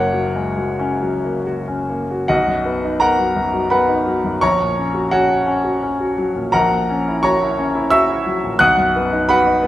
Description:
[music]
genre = classical, romantic character piece for solo piano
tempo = 86 BPM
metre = 3/4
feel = uneven beats, rubato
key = B major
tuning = A4 = 440 Hz
[part]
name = clear grand piano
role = solo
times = 0.0-9.7 s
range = F#1 to F#6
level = -15 LUFS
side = equal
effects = none
[sound]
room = wet recital hall reverb, RT60 1.4 s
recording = none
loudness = -15 LUFS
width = side -14 dB against mid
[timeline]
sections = 0.0-2.3 A section; 2.3-9.7 B section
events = none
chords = 0.0 F#; 2.3 B; 4.4 F#/A#; 6.5 F#7/A#; 8.6 B

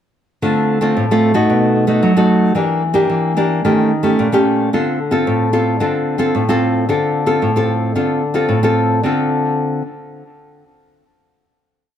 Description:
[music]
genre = samba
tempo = 111 BPM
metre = 4/4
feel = straight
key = D minor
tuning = A4 = 438 Hz
[part]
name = nylon-string guitar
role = solo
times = 0.4-9.8 s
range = A2 to A4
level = -13 LUFS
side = equal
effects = none
[sound]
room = wet studio ambience, RT60 0.5 s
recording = heard from further back in the room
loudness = -13 LUFS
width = side -9 dB against mid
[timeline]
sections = 0.4-9.0 A section; 9.0-11.2 final chord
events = none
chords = 0.4 Dm7; 1.5 B7; 2.6 Em7b5; 3.6 Eb7#11; 4.7 Dm7

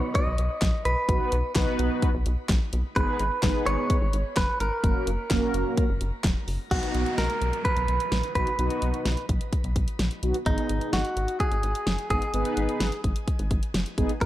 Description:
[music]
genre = synth-pop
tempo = 128 BPM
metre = 4/4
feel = straight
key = B major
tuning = A4 = 440 Hz
[part]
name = mellow synth brass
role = accompaniment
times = 0.0-14.3 s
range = A#3 to B4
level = -31 LUFS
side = right 1 dB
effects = chorus, shimmer reverb
[part]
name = pop drum kit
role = drums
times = 0.1-14.3 s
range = crash cymbal, handclaps, hi-hat, kick drum, snare drum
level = -26 LUFS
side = equal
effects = none
[part]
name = direct-recorded clean electric guitar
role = melody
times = 0.2-14.3 s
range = D#4 to D#5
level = -29 LUFS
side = right 1 dB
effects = spring reverb, shimmer reverb, analog delay
[part]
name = rubbery square bass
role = bass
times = 0.3-14.3 s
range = E1 to B1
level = -28 LUFS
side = equal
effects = none
[part]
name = downlifter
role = sound effects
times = 6.7-10.5 s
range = none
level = -38 LUFS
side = right 1 dB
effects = none
[sound]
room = light reverb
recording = none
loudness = -23 LUFS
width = side -14 dB against mid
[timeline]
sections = 0.0-6.7 A section; 6.7-14.3 B section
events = none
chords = 0.0 B; 3.0 G#m; 4.8 F#; 6.7 B; 10.5 G#m

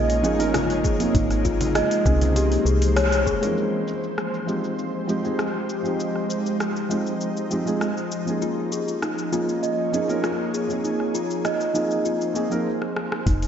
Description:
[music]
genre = organic downtempo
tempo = 99 BPM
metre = 4/4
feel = straight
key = F minor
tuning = A4 = 440 Hz
[part]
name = felt-muted upright piano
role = accompaniment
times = 0.0-12.7 s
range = F3 to Bb4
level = -27 LUFS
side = right 1 dB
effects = sidechain pumping, tape echo
[part]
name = ethereal airy pad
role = sustained chords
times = 0.0-12.7 s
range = E3 to Db5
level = -28 LUFS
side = left 1 dB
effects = ensemble chorus, built-in reverb, vintage 12-bit sampler grit, sidechain pumping
[part]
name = steel tongue drum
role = arpeggios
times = 0.0-3.5, 8.4-13.4 s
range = Eb4 to Eb5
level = -25 LUFS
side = equal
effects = tape echo
[part]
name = woody FM bass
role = bass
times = 0.0-3.3, 13.3-13.5 s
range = F1 to C2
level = -23 LUFS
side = equal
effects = none
[part]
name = afro-pop drum kit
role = drums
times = 0.1-13.5 s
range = hi-hat, rim click, shaker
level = -31 LUFS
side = equal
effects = low-pass filter on hats, low-pass filter on perc, low-pass filter on snare
[part]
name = congas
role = percussion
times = 0.6-3.5 s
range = none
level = -34 LUFS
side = right 2 dB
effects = none
[part]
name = electronic kick drum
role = drums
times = 0.8-3.4, 13.3-13.4 s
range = none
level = -24 LUFS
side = equal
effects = none
[sound]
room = wet lush hall reverb, RT60 1.9 s, studio reverb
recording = dreamy mix soaked in reverb, nothing above 7.8 kHz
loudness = -21 LUFS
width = side -8 dB against mid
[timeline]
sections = 0.0-3.6 A section; 3.6-13.3 B section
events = band accent 3.0-3.3; filter sweep on drum 3.6-13.3; stop 12.7-13.3; drum fill 12.8-13.3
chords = 0.0 Ab69; 2.4 C7b9b13; 3.6 Fm9; 8.4 Db69; 10.8 Ab69

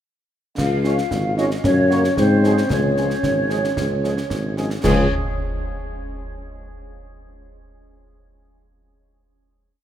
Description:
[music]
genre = military-style march for wind band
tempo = 113 BPM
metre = 2/4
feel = straight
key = Db major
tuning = A4 = 440 Hz
[part]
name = mellow euphonium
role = second line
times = 0.6-5.1 s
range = C4 to F4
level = -24 LUFS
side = left 3 dB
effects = none
[part]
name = small flute group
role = second line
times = 0.6-5.1 s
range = C5 to F5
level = -26 LUFS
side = right 2 dB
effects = none
[part]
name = mellow tuba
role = bass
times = 0.6-5.1 s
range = Ab1 to Ab2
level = -20 LUFS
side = equal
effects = none
[part]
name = concert snare drum, clash cymbals and concert bass drum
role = drums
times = 0.6-5.1 s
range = none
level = -26 LUFS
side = equal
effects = none
[part]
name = warm French horn section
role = accompaniment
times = 0.8-5.1 s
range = F3 to Gb4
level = -30 LUFS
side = right 3 dB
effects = none
[part]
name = dark trumpet section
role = melody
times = 0.9-5.1 s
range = Ab4 to Db5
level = -31 LUFS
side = left 2 dB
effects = none
[sound]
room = moderate cathedral reverb, RT60 5.3 s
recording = in a vast, echoing space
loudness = -17 LUFS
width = side -10 dB against mid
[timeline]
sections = 0.6-4.8 A section; 4.8-5.9 final chord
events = none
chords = 0.6 Db; 1.6 Gb; 2.2 Ab7; 2.7 Db

